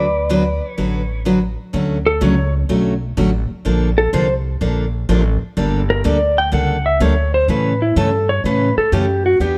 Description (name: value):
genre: country, western swing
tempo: 125 BPM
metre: 4/4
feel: swing 68% on 8ths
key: D major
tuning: A4 = 440 Hz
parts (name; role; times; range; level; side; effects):
- clean lap steel guitar; melody; 0.0-9.6 s; E4 to G5; -20 LUFS; equal; none
- picked steel-string acoustic guitar; accompaniment; 0.0-9.6 s; C#3 to B4; -22 LUFS; equal; none
- upright bass; bass; 0.0-9.6 s; G1 to A2; -22 LUFS; equal; none
room: light reverb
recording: none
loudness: -17 LUFS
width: mono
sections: 0.0-1.7 A section; 1.7-9.6 B section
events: electric slide guitar solo 1.7-9.6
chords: 0.0 D6; 1.7 Dmaj7; 3.7 Bbmaj7; 5.6 Gmadd9; 7.5 A